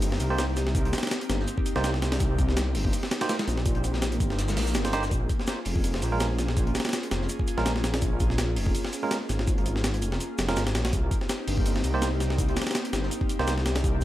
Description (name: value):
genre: drum and bass, jungle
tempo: 165 BPM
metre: 4/4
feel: swing 55% on 16ths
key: unclear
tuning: A4 = 439 Hz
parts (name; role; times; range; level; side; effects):
- airy breathy pad; sustained chords; 0.0-14.0 s; Bb3 to Ab4; -33 LUFS; equal; chorus, vintage 12-bit sampler grit
- detuned saw bass; bass; 0.0-14.0 s; F1 to C2; -27 LUFS; equal; none
- breakbeat sampler-style drum kit; drums; 0.0-14.0 s; hi-hat, kick drum, snare drum; -28 LUFS; equal; none
- crunchy breakbeat drum kit; drums; 0.0-14.0 s; hi-hat, shaker, snare drum; -40 LUFS; left 1 dB; high-pass filter on hats, high-pass filter on snare, high-pass filter on perc, high-pass filter on room
- bell-like tine electric piano; stabs; 0.3-13.5 s; Ab3 to C5; -33 LUFS; right 4 dB; dub echo
- swell; sound effects; 4.5-5.1 s; none; -38 LUFS; right 2 dB; none
room: studio reverb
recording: none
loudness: -24 LUFS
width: side -14 dB against mid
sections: 0.0-14.0 A section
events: swell 4.5-5.1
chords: 0.0 Cm7; 5.1 Bbm7; 10.9 Cm7